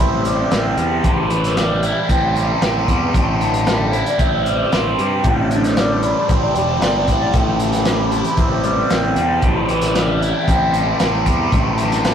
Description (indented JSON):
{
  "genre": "psychedelic rock",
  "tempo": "114 BPM",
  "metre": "4/4",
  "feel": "straight",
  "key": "A minor",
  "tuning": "A4 = 440 Hz",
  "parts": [
    { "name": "clean lap steel guitar", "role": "melody", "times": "0.0-12.1 s", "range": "G4 to G5", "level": "-26 LUFS", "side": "left 1 dB", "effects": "none" },
    { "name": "bright tonewheel organ", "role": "sustained chords", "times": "0.0-12.1 s", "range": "C4 to C5", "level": "-31 LUFS", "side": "right 1 dB", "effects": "none" },
    { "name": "overdriven electric guitar", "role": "riff", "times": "0.0-12.1 s", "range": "A2 to E4", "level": "-18 LUFS", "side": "equal", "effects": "phaser" },
    { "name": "fuzz picked electric bass", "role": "bass", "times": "0.0-12.1 s", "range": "E1 to G2", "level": "-21 LUFS", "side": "equal", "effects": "overdrive" },
    { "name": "crunchy breakbeat drum kit", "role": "drums", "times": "0.2-12.1 s", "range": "hi-hat, kick drum, snare drum", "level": "-20 LUFS", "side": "equal", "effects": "none" }
  ],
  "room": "moderate booth ambience, RT60 0.2 s",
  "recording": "rough rehearsal-room recording, warm saturation",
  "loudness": "-14 LUFS",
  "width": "side -8 dB against mid",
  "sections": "0.0-12.1 A section",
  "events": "none",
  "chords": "0.0 Am7; 3.1 Cadd9/A; 7.3 Am7; 11.5 Cadd9/A",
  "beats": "0.52 | 1.04 1.57 2.09 2.61 | 3.14 3.66 4.19 4.71 | 5.24 5.76 6.29 6.81 | 7.33 7.86 8.38 8.91 | 9.43 9.96 10.48 11.01 | 11.53 12.06"
}